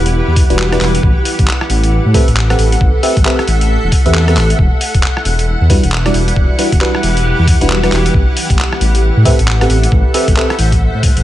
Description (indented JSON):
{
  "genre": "UK garage, two-step garage",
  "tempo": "135 BPM",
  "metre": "4/4",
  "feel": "swing 62% on 16ths",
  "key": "unclear",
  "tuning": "A4 = 437 Hz",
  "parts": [
    { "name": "soft string machine", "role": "sustained chords", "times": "0.0-11.2 s", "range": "F#5", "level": "-24 LUFS", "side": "left 1 dB", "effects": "phaser, ensemble chorus, sidechain pumping" },
    { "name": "dark detuned saw bass", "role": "bass", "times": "0.0-11.2 s", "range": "E1 to A2", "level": "-13 LUFS", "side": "equal", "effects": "none" },
    { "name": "granular cloud pad", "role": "texture", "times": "0.0-11.2 s", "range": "E4 to E5", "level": "-20 LUFS", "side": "equal", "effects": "built-in reverb, sidechain pumping" },
    { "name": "boom bap sampler-style drum kit", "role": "drums", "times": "0.1-11.2 s", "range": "handclaps, hi-hat, rim click", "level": "-19 LUFS", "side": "left 1 dB", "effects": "none" },
    { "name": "electronic kick drum", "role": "drums", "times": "0.4-11.1 s", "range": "none", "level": "-12 LUFS", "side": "equal", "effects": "none" },
    { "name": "FM electric piano", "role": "stabs", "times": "0.5-10.6 s", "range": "G3 to F#5", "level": "-17 LUFS", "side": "right 1 dB", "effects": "chorus, phaser, digital delay" }
  ],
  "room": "little or no reverb",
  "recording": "nothing above 11.0 kHz",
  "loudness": "-10 LUFS",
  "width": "side -13 dB against mid",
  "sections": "0.0-11.2 A section",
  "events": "none",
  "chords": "0.0 Em9; 1.0 Am9; 4.6 Em9; 8.1 Am9"
}